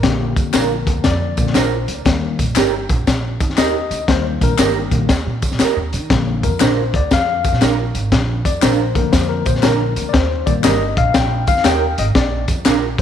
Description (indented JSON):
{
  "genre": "uptempo 1960s-style soul",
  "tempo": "119 BPM",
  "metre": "4/4",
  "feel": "swing 66% on 8ths",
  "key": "Bb major",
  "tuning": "A4 = 440 Hz",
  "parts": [
    { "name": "tine electric piano", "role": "accompaniment", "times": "0.0-13.0 s", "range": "D3 to G5", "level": "-21 LUFS", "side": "left 7 dB", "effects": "medium stereo tremolo" },
    { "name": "upright bass", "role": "bass", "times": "0.0-13.0 s", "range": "G1 to Eb3", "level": "-20 LUFS", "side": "right 2 dB", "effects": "none" },
    { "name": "crunchy breakbeat drum kit", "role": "drums", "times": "0.0-13.0 s", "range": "hi-hat, kick drum, snare drum", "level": "-18 LUFS", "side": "left 2 dB", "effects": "none" },
    { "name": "tambourine and handclaps", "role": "percussion", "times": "0.4-12.8 s", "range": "none", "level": "-28 LUFS", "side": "left 2 dB", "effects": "none" },
    { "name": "mellow electric guitar", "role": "stabs", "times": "0.5-12.8 s", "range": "D4 to Bb4", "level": "-22 LUFS", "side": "right 13 dB", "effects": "ensemble chorus" }
  ],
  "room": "light reverb, small room ambience",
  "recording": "1960s-style stereo with parts hard left and right",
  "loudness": "-14 LUFS",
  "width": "side -9 dB against mid",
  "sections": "0.0-13.0 A section",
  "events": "tine electric piano solo 0.0-13.0",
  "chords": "0.0 Bb; 2.1 Eb; 6.1 Bb; 10.1 Eb; 12.2 Bb"
}